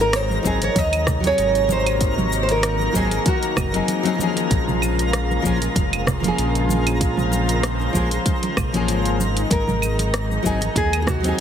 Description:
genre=sunset chillout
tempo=96 BPM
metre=4/4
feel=swing 55% on 16ths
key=unclear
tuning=A4 = 444 Hz
part: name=nylon-string guitar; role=melody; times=0.0-4.2, 9.5-11.4 s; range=Gb4 to Eb5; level=-23 LUFS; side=right 1 dB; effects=ping-pong delay, shimmer reverb
part: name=lush unison pad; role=sustained chords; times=0.0-11.4 s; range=Db3 to C5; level=-27 LUFS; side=left 1 dB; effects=chorus, shimmer reverb
part: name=round analog bass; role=bass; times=0.0-11.3 s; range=F1 to Eb2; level=-24 LUFS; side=equal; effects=none
part: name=smooth R&B drum kit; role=drums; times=0.0-11.4 s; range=claves, hi-hat, rim click, shaker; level=-26 LUFS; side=right 1 dB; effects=none
part: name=twinkling granular texture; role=texture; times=0.0-11.4 s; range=Bb4 to Bb5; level=-29 LUFS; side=right 1 dB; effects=built-in reverb, shimmer reverb
part: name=congas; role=percussion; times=0.3-11.4 s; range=none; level=-29 LUFS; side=right 2 dB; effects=none
part: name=nylon-string guitar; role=accompaniment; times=0.4-11.4 s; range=C3 to Ab4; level=-25 LUFS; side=moving between left 6 dB and right 5 dB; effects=auto-pan, digital delay, shimmer reverb
part: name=electronic kick drum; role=drums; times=0.4-11.2 s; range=none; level=-24 LUFS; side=equal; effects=none
room=moderate lush hall reverb, RT60 2.3 s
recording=heavily compressed radio sound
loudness=-18 LUFS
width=side -8 dB against mid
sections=0.0-11.4 A section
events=none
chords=0.0 Ab7; 4.5 Bbm7; 9.2 Ab7

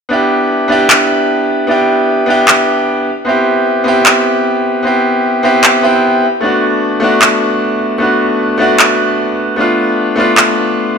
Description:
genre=future bass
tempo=152 BPM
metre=4/4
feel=swing 53% on 16ths, half-time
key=G major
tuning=A4 = 439 Hz
part: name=bright concert grand piano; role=accompaniment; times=0.1-11.0 s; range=A3 to G4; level=-10 LUFS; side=equal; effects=ping-pong delay
part: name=electronic handclaps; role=drums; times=0.9-10.5 s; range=none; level=-11 LUFS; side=equal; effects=overdrive, small room ambience
room=moderate lush hall reverb, RT60 1.8 s, small room ambience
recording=none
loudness=-9 LUFS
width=side -6 dB against mid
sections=0.1-11.0 A section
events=none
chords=0.1 G6/B; 3.1 Cmaj7/B; 6.2 Bm7/A; 9.6 Bm7b5/A

